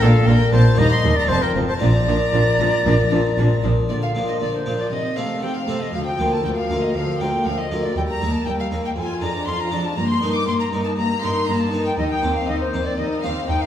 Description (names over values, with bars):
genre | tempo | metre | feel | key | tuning
classical, baroque-style concerto movement with solo episodes | 118 BPM | 4/4 | straight | Bb major | A4 = 439 Hz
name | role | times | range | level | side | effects
silver concert flute | melody | 0.0-13.7 s | A4 to D6 | -24 LUFS | left 1 dB | none
warm chamber violin section | melody | 0.0-13.7 s | C4 to C6 | -32 LUFS | left 2 dB | none
warm chamber violin section | second line | 0.0-13.7 s | C4 to D6 | -29 LUFS | left 2 dB | none
harpsichord | accompaniment | 0.0-13.7 s | D2 to D5 | -25 LUFS | left 1 dB | none
warm chamber viola section | accompaniment | 0.0-13.7 s | D3 to F4 | -26 LUFS | left 1 dB | none
rich chamber double bass section | bass | 0.0-3.7 s | F1 to Eb2 | -21 LUFS | equal | none
rich symphonic cello section | bass | 0.0-13.6 s | D2 to C3 | -23 LUFS | right 1 dB | none
room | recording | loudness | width
wet recital hall reverb, RT60 1.8 s | recorded in a church or concert hall | -17 LUFS | side -10 dB against mid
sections
0.0-3.9 A section; 3.9-13.7 B section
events
none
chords
0.0 Bb; 0.8 Eb; 1.3 F5; 1.8 Bb; 4.9 Adim/C; 5.9 Bb/D; 8.0 Eb; 9.0 Ddim/F; 10.0 Eb/G; 12.0 Cm/Eb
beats
0.28 0.78 1.29 | 1.81 2.34 2.86 3.38 | 3.90 4.41 4.92 5.43 | 5.94 6.45 6.95 7.46 | 7.97 8.47 8.97 9.47 | 9.97 10.47 10.97 11.48 | 11.98 12.48 12.98 13.49